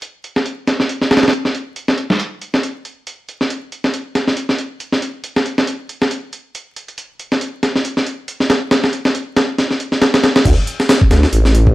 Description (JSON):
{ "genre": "breakbeat, breaks", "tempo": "138 BPM", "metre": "4/4", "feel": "swing 57% on 16ths", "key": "unclear", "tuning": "A4 = 440 Hz", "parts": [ { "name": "breakbeat sampler-style drum kit", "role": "drums", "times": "0.0-11.7 s", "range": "crash cymbal, hi-hat, kick drum, snare drum", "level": "-14 LUFS", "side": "equal", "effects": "low-pass filter on snare, low-pass filter on hats, low-pass filter on kick, low-pass filter on cymbals" }, { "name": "phased detuned saw bass", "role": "bass", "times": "10.5-11.7 s", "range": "A1 to D2", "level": "-11 LUFS", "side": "equal", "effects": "phaser, tube saturation" } ], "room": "light reverb", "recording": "vinyl crackle", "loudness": "-14 LUFS", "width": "side -17 dB against mid", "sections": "0.0-10.5 A section; 10.5-11.7 B section", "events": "drop 10.5-11.7", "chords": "none" }